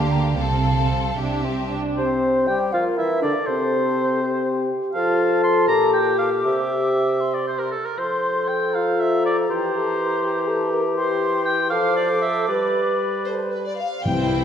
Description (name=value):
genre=quick classical-period movement for symphony orchestra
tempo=75-83 BPM (dotted quarters)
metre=6/8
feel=rubato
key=unclear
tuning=A4 = 439 Hz
part: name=warm studio violin section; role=melody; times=0.0-1.8, 13.3-14.4 s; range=B4 to G5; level=-32 LUFS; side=left 3 dB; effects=none
part: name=mellow concert flute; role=second line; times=0.0-14.4 s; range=B4 to D6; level=-29 LUFS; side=left 2 dB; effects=none
part: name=rich studio violin section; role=second line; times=0.0-1.8, 14.1-14.4 s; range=E4 to C5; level=-29 LUFS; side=left 3 dB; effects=none
part: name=warm chamber viola section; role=accompaniment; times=0.0-2.0, 14.1-14.4 s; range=G3 to D4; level=-29 LUFS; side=right 2 dB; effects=none
part: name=rich chamber cello section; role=bass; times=0.0-1.7, 14.1-14.4 s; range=C2 to D3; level=-26 LUFS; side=right 4 dB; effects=none
part: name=rich chamber double bass section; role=bass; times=0.0-1.8, 14.1-14.4 s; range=C2 to D2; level=-26 LUFS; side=right 3 dB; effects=none
part: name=warm clarinet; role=second line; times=2.0-14.4 s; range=C4 to C5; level=-26 LUFS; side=left 1 dB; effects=none
part: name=warm oboe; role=second line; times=2.0-13.3 s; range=A4 to C6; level=-25 LUFS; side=right 1 dB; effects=none
part: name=mellow bassoon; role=accompaniment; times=2.0-14.4 s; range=Bb2 to G3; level=-26 LUFS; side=right 2 dB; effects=none
part: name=warm French horn section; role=sustained chords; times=2.0-14.4 s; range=G3 to C5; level=-24 LUFS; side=left 3 dB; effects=none
part: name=timpani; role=percussion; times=14.1-14.4 s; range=C3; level=-24 LUFS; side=left 2 dB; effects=none
room=wet scoring stage reverb, RT60 1.9 s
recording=none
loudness=-19 LUFS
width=side -8 dB against mid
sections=0.0-2.0 A section; 2.0-14.1 B section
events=none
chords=0.4 F/C; 1.2 C; 2.0 N.C.; 4.9 F; 5.7 Gm/Bb; 6.4 C; 8.0 F; 9.5 C7/E; 11.0 C/E; 11.7 Dm7/F; 12.5 G